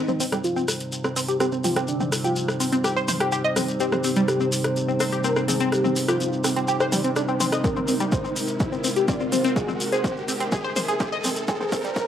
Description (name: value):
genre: melodic techno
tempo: 125 BPM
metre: 4/4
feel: straight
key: C minor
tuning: A4 = 440 Hz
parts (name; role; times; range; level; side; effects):
- wide unison lead; melody; 0.0-12.1 s; D4 to D5; -28 LUFS; equal; sidechain pumping, tape echo
- dark analog pad; sustained chords; 0.0-12.1 s; G3 to C5; -29 LUFS; right 1 dB; chorus, sidechain pumping
- tight sequenced synth; arpeggios; 0.0-11.9 s; G3 to Eb5; -25 LUFS; left 1 dB; chorus, phaser, sidechain pumping, analog delay
- overtone-sweeping drone; drone; 0.4-12.1 s; C3; -33 LUFS; equal; chorus, built-in reverb, sidechain pumping
- riser; sound effects; 0.0-12.1 s; none; -35 LUFS; right 1 dB; none
- deep house drum kit; drums; 0.1-12.1 s; hi-hat, rim click, toms; -29 LUFS; left 1 dB; overdrive, sidechain pumping on toms, sidechain pumping on hats
- shekere; percussion; 0.1-12.1 s; none; -32 LUFS; left 1 dB; none
- electronic kick drum; drums; 7.6-12.1 s; none; -26 LUFS; equal; none
room: moderate digital room reverb, RT60 1.2 s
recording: dry, gritty hardware recording, high-pass filter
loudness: -21 LUFS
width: side -9 dB against mid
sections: 0.0-12.1 A section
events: build-up 0.0-12.1; riser 0.0-12.1; filter sweep on analog synth lead 0.0-12.1; drum fill 7.6-12.1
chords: 0.0 Cm; 7.6 Abadd9